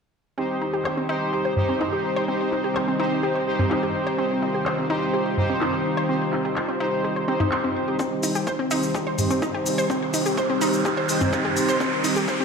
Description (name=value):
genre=melodic techno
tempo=126 BPM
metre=4/4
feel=straight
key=C minor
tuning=A4 = 441 Hz
part: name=warm analog pad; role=sustained chords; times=0.4-12.4 s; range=Eb3 to C5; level=-28 LUFS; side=equal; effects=chorus, sidechain pumping
part: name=analog pluck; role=arpeggios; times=0.4-12.4 s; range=C4 to C6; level=-27 LUFS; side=left 1 dB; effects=chorus, sidechain pumping, ping-pong delay
part: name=analog synth brass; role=stabs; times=0.4-12.4 s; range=Eb4 to C5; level=-26 LUFS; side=equal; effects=chorus, sidechain pumping, ping-pong delay
part: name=bowed-like drone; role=drone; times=1.3-12.4 s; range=C3 to C4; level=-32 LUFS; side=right 2 dB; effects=built-in reverb, sidechain pumping
part: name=house drum kit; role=drums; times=0.9-12.4 s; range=handclaps, hi-hat, shaker, toms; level=-28 LUFS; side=equal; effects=low-pass filter on snare, small room ambience, low-pass filter on toms, low-pass filter on perc, low-pass filter on hats
part: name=electronic kick drum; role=drums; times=8.0-12.4 s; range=none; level=-32 LUFS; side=equal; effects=high-pass filter on kick, small room ambience
part: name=riser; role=sound effects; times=9.0-12.4 s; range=none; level=-29 LUFS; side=right 3 dB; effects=none
room=moderate lush hall reverb, RT60 1.7 s, digital ambience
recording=played on a big sound system in a bare room, stone room reverb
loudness=-21 LUFS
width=side -5 dB against mid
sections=0.4-8.0 A section; 8.0-12.4 B section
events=build-up 8.0-12.4; riser 9.0-12.4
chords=0.4 Cm